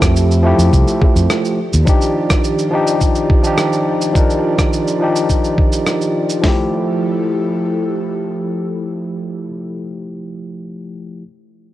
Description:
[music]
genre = sunset chillout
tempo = 105 BPM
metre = 4/4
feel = straight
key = F major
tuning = A4 = 440 Hz
[part]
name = overdriven tine electric piano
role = accompaniment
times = 0.0-11.2 s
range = F3 to Bb4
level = -18 LUFS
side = equal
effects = auto-pan, low-pass filter, tape echo
[part]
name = airy breathy pad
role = sustained chords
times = 0.0-9.5 s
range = Eb3 to D5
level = -22 LUFS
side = equal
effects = chorus
[part]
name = fretless electric bass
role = bass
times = 0.0-1.8 s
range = C2 to F2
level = -12 LUFS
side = equal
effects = none
[part]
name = dusty soul sampler-style drum kit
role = drums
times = 0.0-6.6 s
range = hi-hat, kick drum, snare drum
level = -14 LUFS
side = equal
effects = none
[part]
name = electronic rim click and cabasa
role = drums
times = 0.0-6.4 s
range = none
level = -22 LUFS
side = right 1 dB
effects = none
[part]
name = bongos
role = percussion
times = 1.0-1.1 s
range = none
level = -26 LUFS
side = left 2 dB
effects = none
[sound]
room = little or no reverb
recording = dry, gritty hardware recording, cassette tape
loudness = -13 LUFS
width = side -14 dB against mid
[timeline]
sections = 0.0-6.4 A section; 6.4-8.7 B section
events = none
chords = 0.0 Fmaj9; 1.6 Ebmaj9; 6.4 Fmaj9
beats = 0.15 0.72 1.29 | 1.86 2.44 3.01 3.58 | 4.15 4.72 5.29 5.86 | 6.43 7.01 7.58 8.15

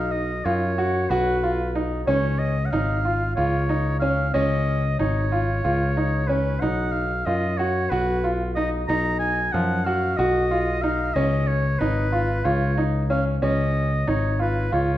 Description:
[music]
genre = contemporary instrumental, chamber music in an uneven meter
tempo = 185 BPM (eighths)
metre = 7/8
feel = straight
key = Db mixolydian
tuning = A4 = 438 Hz
[part]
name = warm oboe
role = melody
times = 0.0-15.0 s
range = Cb5 to Bb5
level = -27 LUFS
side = equal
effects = none
[part]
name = bright grand piano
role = arpeggios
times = 0.0-15.0 s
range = F3 to Gb4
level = -24 LUFS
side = equal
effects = none
[part]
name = picked electric bass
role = bass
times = 0.0-15.0 s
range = Ab1 to Gb2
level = -24 LUFS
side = equal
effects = none
[sound]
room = wet recital hall reverb, RT60 1.6 s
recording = dark, warm production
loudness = -20 LUFS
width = side -13 dB against mid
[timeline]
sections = 0.0-15.0 A section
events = none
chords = 0.0 Cb; 2.1 Db; 6.6 Cb; 11.2 Db7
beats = 0.13 0.46 0.78 1.11 1.43 1.75 | 2.08 2.40 2.73 3.05 3.38 3.70 4.02 | 4.35 4.67 5.00 5.32 5.64 5.97 6.29 | 6.62 6.94 7.27 7.59 7.91 8.24 8.56 | 8.89 9.21 9.54 9.86 10.19 10.51 10.83 | 11.16 11.48 11.81 12.13 12.46 12.78 13.10 | 13.43 13.75 14.08 14.40 14.73

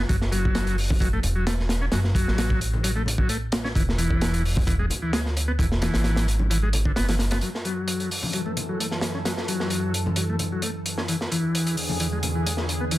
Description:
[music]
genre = breakbeat, breaks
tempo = 131 BPM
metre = 4/4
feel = swing 54% on 16ths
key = F# minor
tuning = A4 = 440 Hz
[part]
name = combo organ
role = riff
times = 0.0-13.0 s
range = D3 to C#4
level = -28 LUFS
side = left 2 dB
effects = low-pass filter, ping-pong delay
[part]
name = upright bass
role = bass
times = 0.0-7.4 s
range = E1 to D2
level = -25 LUFS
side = equal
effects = none
[part]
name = crunchy breakbeat drum kit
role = drums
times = 0.1-13.0 s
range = hi-hat, kick drum, snare drum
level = -26 LUFS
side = equal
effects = high-pass filter on kick, high-pass filter on hats, high-pass filter on snare, high-pass filter on room
[part]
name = congas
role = percussion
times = 0.9-12.3 s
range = none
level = -33 LUFS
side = left 2 dB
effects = none
[part]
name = lush unison pad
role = sustained chords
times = 7.7-13.0 s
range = E2 to A4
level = -29 LUFS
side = equal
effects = chorus, phaser, sidechain pumping
[sound]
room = light reverb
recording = dense, heavily limited modern master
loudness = -22 LUFS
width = side -16 dB against mid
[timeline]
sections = 0.0-7.4 A section; 7.4-13.0 B section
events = none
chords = 0.1 F#m7; 3.8 E7; 7.4 F#m7; 11.1 E7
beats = | 0.09 0.55 1.01 1.47 | 1.92 2.38 2.84 3.30 | 3.75 4.21 4.67 5.13 | 5.59 6.04 6.50 6.96 | 7.42 7.88 8.34 8.79 | 9.25 9.71 10.17 10.63 | 11.08 11.54 12.00 12.46 | 12.92

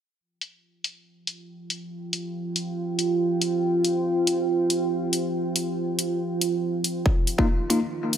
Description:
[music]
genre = deep dubstep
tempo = 140 BPM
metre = 4/4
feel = swing 54% on 16ths, half-time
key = unclear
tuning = A4 = 436 Hz
[part]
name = deep dark ambient pad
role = sustained chords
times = 1.8-8.2 s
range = Eb4 to G5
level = -25 LUFS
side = right 2 dB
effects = chorus, built-in reverb
[part]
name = electronic hi-hat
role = drums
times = 0.4-8.2 s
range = none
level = -26 LUFS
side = left 1 dB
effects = low-pass filter on hats, studio ambience
[part]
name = electronic kick drum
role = drums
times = 7.1-7.5 s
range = none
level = -21 LUFS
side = equal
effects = overdrive, studio ambience
[part]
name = bell-like tine electric piano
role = stabs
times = 7.4-7.8 s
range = Bb3 to F4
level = -24 LUFS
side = left 2 dB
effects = wide subtle chorus, dub echo
[sound]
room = moderate echo chamber reverb, RT60 1.8 s, digital ambience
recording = none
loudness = -23 LUFS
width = side -9 dB against mid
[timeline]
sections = 0.2-8.2 A section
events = filter sweep on ambient pad 0.2-8.2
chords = 0.2 F5; 7.1 Ebsus2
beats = | 0.20 0.63 1.06 1.49 | 1.92 2.34 2.77 3.20 | 3.63 4.06 4.49 4.92 | 5.34 5.77 6.20 6.63 | 7.06 7.49 7.92

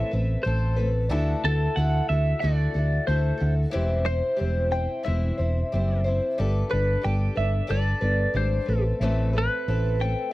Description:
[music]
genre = folk rock and heartland rock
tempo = 91 BPM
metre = 4/4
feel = straight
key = A dorian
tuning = A4 = 440 Hz
[part]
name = twelve-string electric guitar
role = melody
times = 0.0-10.3 s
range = A4 to G5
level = -29 LUFS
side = equal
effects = phaser
[part]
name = picked twelve-string acoustic guitar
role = accompaniment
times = 0.0-10.3 s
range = A2 to C5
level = -29 LUFS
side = left 2 dB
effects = none
[part]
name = hollow-body short-scale fingered electric bass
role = bass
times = 0.0-10.1 s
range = E1 to D2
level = -23 LUFS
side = equal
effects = none
[sound]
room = little or no reverb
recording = dry, close 1970s-style studio recording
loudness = -22 LUFS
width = side -17 dB against mid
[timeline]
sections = 0.0-10.3 A section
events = none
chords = 0.0 Amadd9; 1.1 Dadd9; 3.7 C/E; 6.4 Gadd9; 8.7 Amadd9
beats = 0.45 | 1.11 1.77 2.43 3.09 | 3.75 4.40 5.06 5.72 | 6.38 7.04 7.70 8.36 | 9.02 9.68

